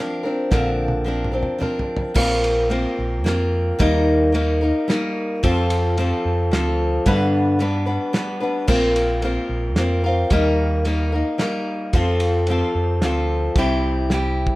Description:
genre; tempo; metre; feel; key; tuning
folk rock and heartland rock; 111 BPM; 3/4; straight; unclear; A4 = 439 Hz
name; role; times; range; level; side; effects
picked old ladder-braced acoustic guitar; accompaniment; 0.0-14.6 s; G2 to B4; -20 LUFS; left 1 dB; none
fingered electric bass; bass; 0.5-14.5 s; Bb1 to G2; -22 LUFS; equal; none
cloth-damped thuddy drum kit; drums; 0.5-14.6 s; crash cymbal, kick drum, ride cymbal, snare drum, toms; -25 LUFS; equal; none
room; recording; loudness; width
light reverb; rough home demo mix; -18 LUFS; side -19 dB against mid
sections
0.0-2.2 A section; 2.2-14.6 B section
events
drum fill 0.5-2.2, 14.1-14.6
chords
0.0 Bbadd9; 2.2 Bbsus2; 3.8 Eb; 5.4 F; 7.1 G; 8.7 Bbsus2; 10.3 Eb; 11.9 F; 13.6 C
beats
| 0.52 1.07 1.62 | 2.17 2.71 3.26 | 3.80 4.35 4.89 | 5.43 5.98 6.52 | 7.07 7.61 8.15 | 8.69 9.23 9.78 | 10.32 10.86 11.40 | 11.94 12.48 13.02 | 13.56 14.10

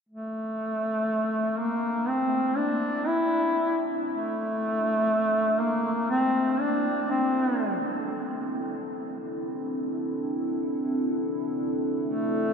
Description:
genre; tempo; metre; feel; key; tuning
dark ambient drone; 60 BPM; 4/4; straight; A phrygian; A4 = 440 Hz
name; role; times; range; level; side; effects
warm duduk; melody; 0.1-12.5 s; A3 to E4; -26 LUFS; equal; diffuse ambient delay
dark analog pad; sustained chords; 1.0-12.5 s; C4 to A4; -31 LUFS; equal; chorus, phaser
room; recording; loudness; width
wet cathedral reverb, RT60 6.9 s; in a vast, echoing space; -25 LUFS; side -6 dB against mid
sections
0.1-12.5 A section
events
fade-in on analog synth pad 0.1-12.5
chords
0.1 A5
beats
| 0.11 1.12 2.12 3.11 | 4.10 5.10 6.08 7.07 | 8.05 9.03 10.02 11.01 | 12.00

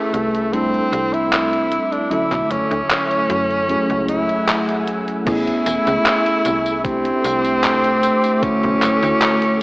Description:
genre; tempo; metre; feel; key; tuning
vaporwave; 76 BPM; 4/4; straight; A major; A4 = 439 Hz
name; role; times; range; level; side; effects
bright tenor saxophone; melody; 0.0-9.6 s; A3 to E4; -19 LUFS; equal; tape echo
bell-like tine electric piano; accompaniment; 0.0-9.6 s; D3 to B4; -21 LUFS; equal; lush chorus, vintage 12-bit sampler grit, tape echo
soft string machine; sustained chords; 0.0-9.6 s; A3 to E6; -25 LUFS; equal; ensemble chorus
slap-like FM bass; bass; 0.1-9.1 s; E1 to F#2; -28 LUFS; equal; none
detuned 8-bit digital drum machine; drums; 0.1-9.6 s; crash cymbal, handclaps, hi-hat, tambourine; -22 LUFS; equal; vintage 12-bit sampler grit
electronic kick drum; drums; 5.3-8.6 s; none; -26 LUFS; equal; vintage 12-bit sampler grit
room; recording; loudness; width
wet lush hall reverb, RT60 1.9 s; dreamy mix soaked in reverb, cassette tape, AM radio sound; -15 LUFS; side -23 dB against mid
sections
0.0-5.3 A section; 5.3-9.6 B section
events
filter sweep on string machine 0.0-5.3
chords
0.0 Amaj9; 0.5 C69; 2.1 Bm11; 3.7 F#m9; 5.3 Amaj9; 6.8 C69; 8.4 Bm11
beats
0.53 1.32 | 2.11 2.90 3.69 4.48 | 5.27 6.06 6.85 7.64 | 8.43 9.22

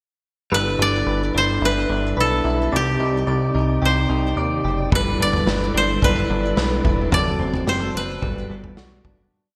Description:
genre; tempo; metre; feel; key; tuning
dream pop; 109 BPM; 4/4; straight; G major; A4 = 440 Hz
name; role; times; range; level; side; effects
koto; melody; 0.5-9.6 s; G4 to D5; -25 LUFS; equal; digital delay
percussive tonewheel organ; sustained chords; 0.5-9.3 s; C3 to D5; -29 LUFS; equal; fast rotary speaker
direct-recorded clean electric guitar; arpeggios; 0.5-9.6 s; C3 to D5; -27 LUFS; equal; lush chorus, digital delay
chorused synth bass; bass; 0.5-9.3 s; E1 to Eb2; -26 LUFS; equal; none
raw garage drum kit; drums; 4.9-9.2 s; kick drum, snare drum, toms; -25 LUFS; equal; gated reverb
room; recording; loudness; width
moderate lush hall reverb, RT60 1.9 s, studio reverb; bright 1980s-style digital production; -20 LUFS; mono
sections
0.5-9.3 A section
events
fade-out 7.1-9.3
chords
0.5 G6; 2.7 Cmadd9; 4.9 G6; 7.1 D7/F#; 8.2 Gmaj7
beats
| 0.52 1.07 1.62 2.17 | 2.72 3.27 3.82 4.37 | 4.92 5.47 6.02 6.57 | 7.12 7.67 8.22 8.78

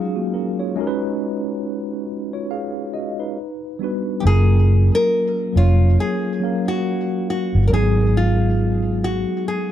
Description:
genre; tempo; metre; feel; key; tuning
lo-fi hip hop; 69 BPM; 4/4; swing 57% on 16ths; unclear; A4 = 441 Hz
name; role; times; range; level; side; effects
nylon-string guitar; melody; 0.0-9.7 s; F4 to Bb4; -23 LUFS; left 2 dB; tape echo
mellow tine electric piano; accompaniment; 0.0-9.7 s; Gb3 to F5; -22 LUFS; equal; medium stereo tremolo, cassette tape
vintage muted fingered electric bass; bass; 4.2-9.2 s; F1 to Ab1; -15 LUFS; equal; none
room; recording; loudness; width
light reverb; echo-heavy mix; -17 LUFS; side -11 dB against mid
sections
0.0-4.2 A section; 4.2-9.7 B section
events
none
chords
0.0 Ebm11; 0.8 B69; 3.4 Gmaj7; 4.2 Gbmaj7; 7.7 Abm7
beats
| 0.76 1.63 2.50 3.37 | 4.24 5.11 5.98 6.85 | 7.72 8.59 9.46

